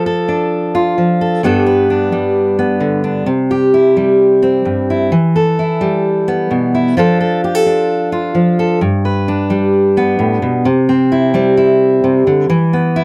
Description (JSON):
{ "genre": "folk", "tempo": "130 BPM", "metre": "4/4", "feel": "straight", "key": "C major", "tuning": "A4 = 440 Hz", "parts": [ { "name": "fingerpicked steel-string acoustic guitar", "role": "solo", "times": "0.0-13.0 s", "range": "G2 to B4", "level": "-14 LUFS", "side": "equal", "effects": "none" } ], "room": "light reverb", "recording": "dry, close 1970s-style studio recording", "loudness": "-14 LUFS", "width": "mono", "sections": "0.0-10.7 A section; 10.7-13.0 B section", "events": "build-up 10.7-13.0", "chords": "0.0 Dm/F; 1.4 G; 3.3 C; 5.1 Em; 7.0 Dm/F; 8.8 Gadd9; 10.7 C; 12.5 E5" }